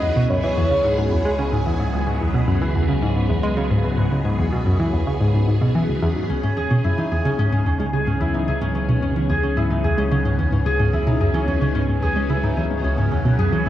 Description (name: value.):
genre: ambient.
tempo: 110 BPM.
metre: 4/4.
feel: straight.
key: C# minor.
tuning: A4 = 442 Hz.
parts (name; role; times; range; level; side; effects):
mellow horn-like synth lead; melody; 0.0-1.4 s; C#5 to D#5; -24 LUFS; equal; chorus, cassette tape, tape echo.
phased string machine; sustained chords; 0.0-13.7 s; C#3 to G#4; -25 LUFS; equal; ensemble chorus, phaser, cassette tape.
analog pluck; riff; 0.0-13.7 s; C#2 to G#3; -20 LUFS; equal; chorus, cassette tape, tape echo.
warm sub bass; bass; 0.0-13.7 s; C#2; -26 LUFS; equal; none.
bubbling stepped-filter texture; texture; 0.0-6.3 s; B5; -40 LUFS; right 4 dB; chorus, built-in reverb, cassette tape.
Celtic harp; arpeggios; 6.3-13.7 s; C#4 to G#4; -24 LUFS; left 2 dB; auto-pan, cassette tape, tape echo.
room: moderate spring reverb, RT60 1.2 s, digital ambience.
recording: home recording on cassette.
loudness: -18 LUFS.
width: side -12 dB against mid.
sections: 0.0-6.3 A section; 6.3-13.7 B section.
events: none.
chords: 0.0 C#m; 6.3 C#m7.